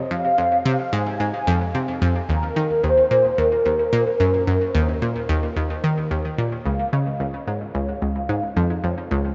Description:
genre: ambient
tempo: 110 BPM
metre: 4/4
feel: straight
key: Eb dorian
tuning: A4 = 440 Hz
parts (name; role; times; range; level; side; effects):
- mellow horn-like synth lead; melody; 0.0-9.3 s; Bb4 to Ab5; -24 LUFS; equal; ensemble chorus, tape echo
- analog pluck; riff; 0.1-9.3 s; Db2 to Eb3; -24 LUFS; equal; chorus, tape echo
room: wet huge ambient reverb, RT60 8.8 s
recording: nothing above 7.7 kHz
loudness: -21 LUFS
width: mono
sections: 0.0-9.3 A section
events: none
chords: 0.0 Fm; 2.3 Ebm; 6.7 Dbadd9

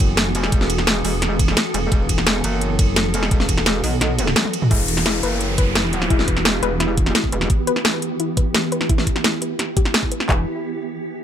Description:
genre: dark technical drum and bass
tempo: 172 BPM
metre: 4/4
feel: straight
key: E minor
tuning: A4 = 440 Hz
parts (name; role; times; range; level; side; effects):
- swarming drone; sustained chords; 0.0-10.5 s; E3 to A4; -25 LUFS; right 1 dB; built-in reverb, sidechain pumping
- metallic wobble bass; bass; 0.0-7.5, 10.3-10.5 s; E1 to B1; -22 LUFS; equal; chorus
- drum and bass drum kit; drums; 0.0-10.4 s; handclaps, kick drum; -18 LUFS; equal; none
- drum and bass drum kit; drums; 0.0-10.3 s; hi-hat, ride cymbal, snare drum, toms; -20 LUFS; equal; none
- soft round pluck; arpeggios; 4.7-10.5 s; E4 to B4; -27 LUFS; left 6 dB; chorus, sidechain pumping, tape echo
- downlifter; sound effects; 4.7-7.5 s; none; -27 LUFS; left 1 dB; none
room: little or no reverb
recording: none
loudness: -16 LUFS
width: side -9 dB against mid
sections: 0.0-4.7 A section; 4.7-10.3 B section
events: drop 0.0-4.7; kick drops out 4.0-4.7; drum fill 4.4-4.7; filter sweep on synth drone 4.7-10.3; filter sweep on synth pluck 4.7-10.3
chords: 0.0 E5; 4.7 Em

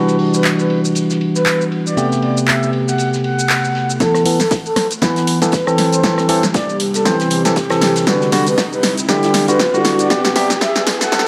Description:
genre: deep house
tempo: 118 BPM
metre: 4/4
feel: swing 56% on 16ths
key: E minor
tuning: A4 = 445 Hz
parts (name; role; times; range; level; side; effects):
- breathy flute-like synth lead; melody; 0.0-11.2 s; G4 to F#5; -23 LUFS; equal; subtle chorus, delay
- barky tine electric piano; stabs; 0.0-11.3 s; C3 to C5; -19 LUFS; equal; overdrive, sidechain pumping, low-pass filter, delay
- deep dark ambient pad; texture; 0.0-11.3 s; C4 to B5; -29 LUFS; equal; none
- damped 70s drum kit; drums; 0.1-11.3 s; hi-hat, ride cymbal, snare drum; -34 LUFS; equal; high-pass filter on cymbals, low-pass filter on cymbals, high-pass filter on hats, low-pass filter on hats, high-pass filter on snare, low-pass filter on snare, high-pass filter on room, low-pass filter on room
- punchy analog drum machine; drums; 0.1-11.3 s; handclaps, hi-hat, rim click, shaker, snare drum; -21 LUFS; equal; none
- electronic kick drum; drums; 4.0-11.2 s; none; -23 LUFS; equal; high-pass filter on kick, high-pass filter on room
- riser and reverse cymbal; sound effects; 6.2-11.3 s; none; -29 LUFS; equal; none
room: light reverb, digital ambience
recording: vinyl crackle, high-pass filter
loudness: -15 LUFS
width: mono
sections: 0.0-4.0 A section; 4.0-11.3 B section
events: build-up 4.0-11.3; drum fill 4.0-11.3; filter sweep on tine electric piano 4.0-11.3; filter sweep on soft synth lead 4.0-11.3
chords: 0.0 Em9; 2.0 Am9; 4.0 G69; 5.8 C6; 8.1 Em9; 10.1 Am9

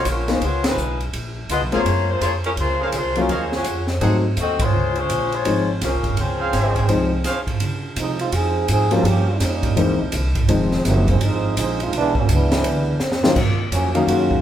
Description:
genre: jazz, big band swing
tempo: 167 BPM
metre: 4/4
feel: swing 63% on 8ths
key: Db major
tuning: A4 = 439 Hz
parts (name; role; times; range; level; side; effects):
- mellow saxophone section; melody; 0.0-7.2 s; F3 to Eb5; -22 LUFS; left 2 dB; none
- upright bass; bass; 0.0-14.4 s; F1 to Db3; -23 LUFS; equal; none
- open jazz drum kit; drums; 0.1-14.4 s; crash cymbal, hi-hat, kick drum, ride cymbal, snare drum; -24 LUFS; right 1 dB; none
- warm baby grand piano; accompaniment; 0.3-11.0, 13.2-14.4 s; Eb3 to F5; -22 LUFS; left 3 dB; none
- clear trumpet section; stabs; 1.7-4.2, 6.4-7.4 s; Gb4 to Gb5; -28 LUFS; right 2 dB; none
- warm trombone section; second line; 8.0-14.4 s; C3 to Bb4; -22 LUFS; right 3 dB; none
room: moderate large studio reverb, RT60 1.4 s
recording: band playing live in one room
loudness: -17 LUFS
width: side -10 dB against mid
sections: 0.0-7.6 A section; 7.6-14.4 B section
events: band accent 0.6, 4.6; break 7.3-7.6; trombone section solo 7.6-14.4; drum fill 13.0-13.4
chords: 0.4 Db13; 1.9 Gbmaj9#11; 3.3 Ebm9; 4.0 Ab7b9; 4.7 Dbmaj7; 7.6 Dbmaj9; 9.0 Gm7b5; 9.8 C7alt; 10.5 Fm7; 11.9 E7; 13.4 Ebm9

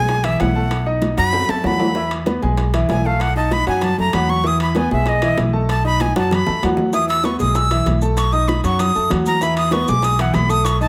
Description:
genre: latin, salsa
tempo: 193 BPM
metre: 4/4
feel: straight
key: E major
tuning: A4 = 440 Hz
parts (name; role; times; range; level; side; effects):
- breathy bright jazz flute; melody; 0.0-10.9 s; D#5 to E6; -23 LUFS; equal; none
- clear concert grand piano; accompaniment; 0.0-10.9 s; E3 to D#6; -24 LUFS; equal; none
- upright bass; bass; 0.0-10.9 s; B1 to F#2; -23 LUFS; equal; none
- bongos; percussion; 0.1-10.9 s; none; -30 LUFS; equal; none
- congas; percussion; 0.1-10.9 s; none; -30 LUFS; equal; none
- timbales; percussion; 0.1-10.8 s; none; -31 LUFS; equal; none
- maracas; percussion; 6.9-10.9 s; none; -40 LUFS; equal; none
room: light reverb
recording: none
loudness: -18 LUFS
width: mono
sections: 0.0-10.9 A section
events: flute solo 0.0-10.9; drum fill 1.3-2.0, 6.0-6.9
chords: 0.0 E; 0.7 B7; 2.0 E; 3.2 B7; 4.4 Emaj7; 5.7 B7; 6.9 E; 8.2 B7; 9.4 E

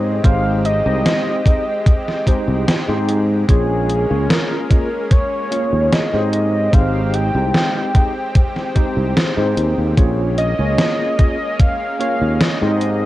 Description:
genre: vaporwave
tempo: 74 BPM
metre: 4/4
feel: straight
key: unclear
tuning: A4 = 440 Hz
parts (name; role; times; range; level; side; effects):
- warm velvety synth lead; melody; 0.0-13.1 s; Ab4 to G5; -22 LUFS; equal; chorus, vintage 12-bit sampler grit, tape echo
- tine electric piano; accompaniment; 0.0-13.1 s; Ab3 to Eb5; -22 LUFS; equal; fast stereo tremolo, wide subtle chorus, vintage 12-bit sampler grit, tape echo
- lush unison pad; sustained chords; 0.0-13.1 s; Ab3 to G4; -27 LUFS; equal; chorus
- fretless electric bass; bass; 0.0-13.1 s; Ab1 to Ab2; -18 LUFS; equal; none
- electronic kick drum; drums; 0.2-11.8 s; none; -13 LUFS; equal; none
- gated 80s digital drum machine; drums; 0.2-13.0 s; hi-hat, snare drum; -19 LUFS; equal; gated reverb, gated reverb snare
room: digital ambience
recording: worn, warbling old tape, cassette tape, warbly pitch drift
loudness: -14 LUFS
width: side -16 dB against mid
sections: 0.0-13.1 A section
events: none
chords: 0.0 Abmaj7; 3.5 Bbm7; 6.3 Abmaj7; 10.0 Bbm7

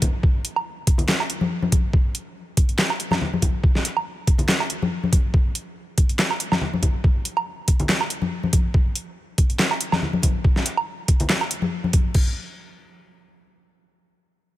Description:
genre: dubstep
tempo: 141 BPM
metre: 4/4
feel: swing 55% on 16ths, half-time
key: none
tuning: none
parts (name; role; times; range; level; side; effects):
- dubstep drum kit; drums; 0.0-12.2 s; crash cymbal, handclaps, hi-hat, snare drum, woodblock; -23 LUFS; right 1 dB; overdrive
- electronic kick drum; drums; 0.0-12.2 s; none; -18 LUFS; equal; none
- congas; percussion; 0.0-12.0 s; none; -26 LUFS; left 3 dB; none
room: digital ambience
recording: none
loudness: -19 LUFS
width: side -15 dB against mid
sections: 0.0-12.1 A section; 12.1-13.8 B section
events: drop 0.0-12.1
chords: none

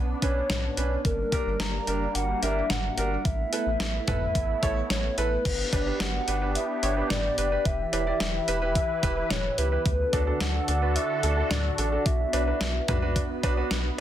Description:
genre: synth-pop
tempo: 109 BPM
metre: 4/4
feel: straight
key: unclear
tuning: A4 = 439 Hz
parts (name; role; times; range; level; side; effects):
- sweeping resonant pad; sustained chords; 0.0-14.0 s; D3 to B4; -34 LUFS; right 1 dB; chorus
- round analog bass; bass; 0.0-13.9 s; E1 to D2; -30 LUFS; equal; none
- hollow clarinet-like synth lead; melody; 0.2-13.7 s; Bb4 to Bb5; -30 LUFS; left 1 dB; chorus, digital delay
- clear baby grand piano; accompaniment; 0.2-13.7 s; C#4 to D5; -32 LUFS; right 3 dB; none
- clean 12-bit digital drum machine; drums; 0.2-13.8 s; cowbell, crash cymbal, hi-hat, kick drum, snare drum, toms; -29 LUFS; equal; none
room: light reverb, digital ambience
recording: dense, heavily limited modern master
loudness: -24 LUFS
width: side -11 dB against mid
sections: 0.0-5.5 A section; 5.5-14.0 B section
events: none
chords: 0.0 Bmadd9; 1.0 Gm; 3.3 Asus2; 5.5 G; 7.7 Em; 9.9 D; 12.1 Bm

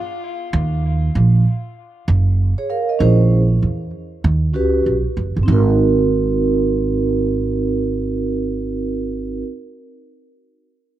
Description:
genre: hip hop, jazz-hop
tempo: 97 BPM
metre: 4/4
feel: swing 62% on 16ths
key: unclear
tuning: A4 = 440 Hz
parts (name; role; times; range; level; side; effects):
- upright bass; bass; 0.5-9.4 s; F#1 to E2; -17 LUFS; right 2 dB; none
- vibraphone with soft mallets; accompaniment; 2.6-9.4 s; B#3 to E#5; -19 LUFS; right 2 dB; none
room: light reverb, studio reverb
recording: none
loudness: -15 LUFS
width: side -12 dB against mid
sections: 0.0-5.5 A section; 5.5-8.0 B section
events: none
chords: 0.0 N.C.; 0.5 D#m; 3.0 A#m7b5; 4.2 D#7alt; 5.5 G#7

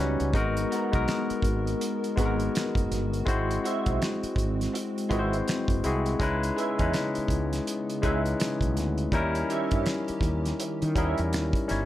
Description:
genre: R&B, neo-soul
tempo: 82 BPM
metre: 4/4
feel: swing 60% on 16ths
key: G# minor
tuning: A4 = 440 Hz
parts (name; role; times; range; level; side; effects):
- barky tine electric piano; accompaniment; 0.0-11.9 s; G3 to C#5; -28 LUFS; left 3 dB; overdrive
- hollow soft pad; sustained chords; 0.0-11.9 s; C#3 to F#5; -37 LUFS; right 3 dB; ensemble chorus
- fretless electric bass; bass; 0.0-11.9 s; F#1 to D#3; -29 LUFS; right 1 dB; none
- cloth-damped thuddy drum kit; drums; 0.0-11.9 s; finger snaps, hi-hat, kick drum, snare drum; -30 LUFS; right 1 dB; none
- electric guitar through a small old amp; second line; 0.7-11.2 s; B3 to E5; -33 LUFS; right 6 dB; analog chorus, plate reverb
room: moderate studio reverb, RT60 0.5 s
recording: none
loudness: -25 LUFS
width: side -13 dB against mid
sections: 0.0-11.9 A section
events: none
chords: 0.3 G#m9; 3.3 G#7alt; 6.2 C#m7; 9.1 D#7b9

